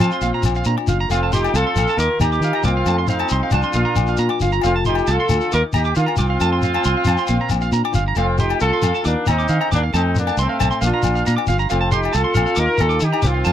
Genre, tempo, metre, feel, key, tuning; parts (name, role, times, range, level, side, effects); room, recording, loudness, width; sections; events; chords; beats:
highlife guitar band; 136 BPM; 4/4; straight; F mixolydian; A4 = 445 Hz
warm horn section; melody; 0.0-13.5 s; A3 to Bb4; -21 LUFS; equal
nylon-string guitar; accompaniment; 0.0-13.5 s; F2 to F4; -27 LUFS; left 4 dB
electric guitar at the edge of break-up; arpeggios; 0.0-13.5 s; F5 to D6; -24 LUFS; right 7 dB; wide subtle chorus, slapback echo
fingered electric bass; bass; 0.0-13.5 s; F1 to F3; -20 LUFS; right 1 dB
agogo bells; percussion; 0.0-13.5 s; -27 LUFS; left 20 dB
shekere; percussion; 0.0-13.5 s; -23 LUFS; left 2 dB
light reverb; dry, close 1970s-style studio recording, faint mains hum; -16 LUFS; side -10 dB against mid
0.0-11.7 A section; 11.7-13.5 A section
0.2 Bb; 1.1 F; 2.0 Ebsus2; 2.9 F; 3.8 Bb; 4.6 F; 5.5 Ebsus2; 6.4 F; 7.3 Bb; 8.2 F; 9.0 Ebsus2; 9.9 F; 10.8 Bb; 11.7 F; 12.6 Ebsus2
0.22 0.67 | 1.11 1.55 1.99 2.43 | 2.87 3.31 3.75 4.20 | 4.64 5.08 5.52 5.96 | 6.40 6.84 7.28 7.72 | 8.16 8.61 9.05 9.49 | 9.93 10.37 10.81 11.26 | 11.70 12.14 12.58 13.02 | 13.46